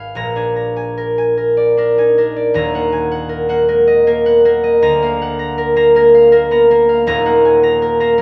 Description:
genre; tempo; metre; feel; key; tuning
classical, solo harp piece; 79 BPM; 3/4; rubato; Eb minor; A4 = 441 Hz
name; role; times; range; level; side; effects
concert harp; solo; 0.0-8.2 s; Eb1 to Cb6; -13 LUFS; equal; none
room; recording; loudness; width
wet recital hall reverb, RT60 1.5 s; none; -13 LUFS; mono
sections
0.0-8.2 A section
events
none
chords
0.2 Bb7; 2.6 Ebm; 4.8 Bb/D; 7.1 Ebm

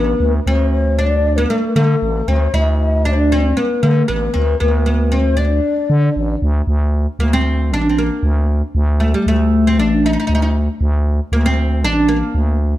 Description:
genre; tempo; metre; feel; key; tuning
Arabic maqam ensemble; 116 BPM; 4/4; straight; D maqam huzam, D maqam hijaz from 6.7 s; A4 = 440 Hz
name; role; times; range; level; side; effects
oud; melody; 0.0-12.6 s; G3 to E4-50c; -18 LUFS; equal; slapback echo
breathy mellow low ney; second line; 0.0-6.4 s; A4+33c to E5-46c; -21 LUFS; left 6 dB; slapback echo
growling FM bass; bass; 0.0-12.7 s; A1 to D3; -15 LUFS; equal; none
room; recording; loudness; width
light reverb; dark, warm production; -13 LUFS; side -14 dB against mid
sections
0.0-6.7 A section; 6.7-12.8 B section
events
none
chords
none

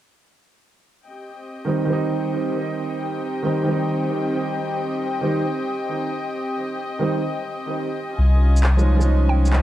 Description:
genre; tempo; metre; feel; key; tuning
future garage; 135 BPM; 4/4; swing 67% on 16ths; C phrygian; A4 = 441 Hz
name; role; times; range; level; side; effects
warm studio string section; sustained chords; 1.1-9.6 s; C4 to Ab5; -27 LUFS; left 1 dB; none
clear upright piano; accompaniment; 1.6-9.6 s; Eb3 to Eb4; -23 LUFS; right 2 dB; low-pass filter, tape echo
warm sub bass; bass; 8.2-9.6 s; C2; -15 LUFS; equal; none
electronic shaker and handclaps; drums; 8.6-9.6 s; none; -27 LUFS; equal; overdrive
hollow square pluck; melody; 9.3-9.5 s; G5; -29 LUFS; right 4 dB; chorus, vintage 12-bit sampler grit
room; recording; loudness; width
light reverb, small room ambience; echo-heavy mix, cassette tape; -20 LUFS; side -13 dB against mid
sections
1.1-9.6 A section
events
none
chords
1.1 Cm; 8.2 Dbadd9

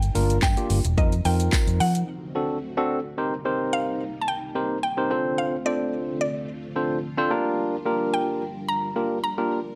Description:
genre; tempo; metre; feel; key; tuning
dance-pop; 109 BPM; 4/4; straight; G minor; A4 = 438 Hz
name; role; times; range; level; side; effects
mallet-like synth pluck; melody; 0.0-9.8 s; D5 to Bb5; -31 LUFS; equal; chorus
string machine, cellos; sustained chords; 0.0-9.8 s; C3 to Bb4; -38 LUFS; equal; ensemble chorus, sidechain pumping
vintage muted fingered electric bass; bass; 0.0-2.0 s; E1 to F3; -25 LUFS; equal; sidechain pumping
house drum kit; drums; 0.0-2.1 s; handclaps, hi-hat, kick drum, shaker; -26 LUFS; equal; none
tine electric piano; accompaniment; 0.1-9.6 s; Bb3 to C5; -28 LUFS; equal; sidechain pumping
tambourine; percussion; 0.4-1.7 s; none; -38 LUFS; equal; none
room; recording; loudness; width
light reverb, digital ambience; dry, gritty hardware recording; -25 LUFS; mono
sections
0.0-3.2 A section; 3.2-9.8 A section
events
break 2.1-3.2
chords
0.0 Gm7; 1.0 F7sus4; 2.1 D7; 3.2 Cm7; 5.1 Dm7; 7.3 Gm7

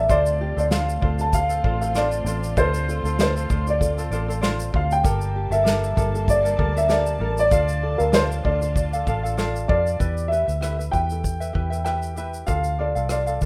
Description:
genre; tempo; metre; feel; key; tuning
acoustic pop; 97 BPM; 4/4; swing 55% on 16ths; D minor; A4 = 440 Hz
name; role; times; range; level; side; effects
dark upright piano; melody; 0.0-13.5 s; Bb4 to A5; -26 LUFS; equal; plate reverb
ukulele; accompaniment; 0.0-13.5 s; E4 to F5; -32 LUFS; equal; plate reverb
warm studio string section; sustained chords; 0.0-10.0 s; D3 to A5; -38 LUFS; equal; plate reverb
vintage muted fingered electric bass; bass; 0.0-13.5 s; G1 to F2; -27 LUFS; equal; none
unplugged drum kit; drums; 0.1-13.5 s; kick drum, rim click, shaker, snare drum; -28 LUFS; equal; none
flamenco guitar; arpeggios; 0.4-13.3 s; G4 to F5; -39 LUFS; equal; plate reverb, delay
room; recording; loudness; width
moderate studio reverb, RT60 0.6 s; rough home demo mix; -22 LUFS; mono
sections
0.0-10.0 A section; 10.0-13.5 B section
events
none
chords
0.1 Dm7; 5.0 Gmadd9; 7.5 Dm; 10.0 Em; 12.5 Dm

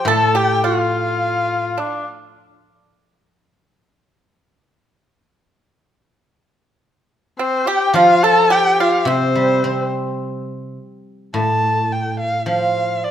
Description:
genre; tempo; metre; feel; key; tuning
chinese traditional, Chinese chamber ensemble; 107 BPM; 4/4; straight; unclear; A4 = 440 Hz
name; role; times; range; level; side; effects
warm erhu; melody; 0.0-2.1, 7.4-13.1 s; C5 to A5; -19 LUFS; equal; none
mellow cor anglais; second line; 0.0-2.1, 7.4-9.9 s; C4 to A4; -20 LUFS; left 5 dB; none
pipa; second line; 0.0-2.0, 7.4-9.9 s; C4 to A4; -21 LUFS; right 4 dB; none
guzheng; accompaniment; 0.0-1.8, 7.9-13.1 s; A2 to C4; -20 LUFS; right 1 dB; none
room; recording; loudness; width
moderate recital hall reverb, RT60 1.5 s; none; -15 LUFS; side -10 dB against mid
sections
0.0-11.4 A section; 11.4-13.1 B section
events
none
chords
none

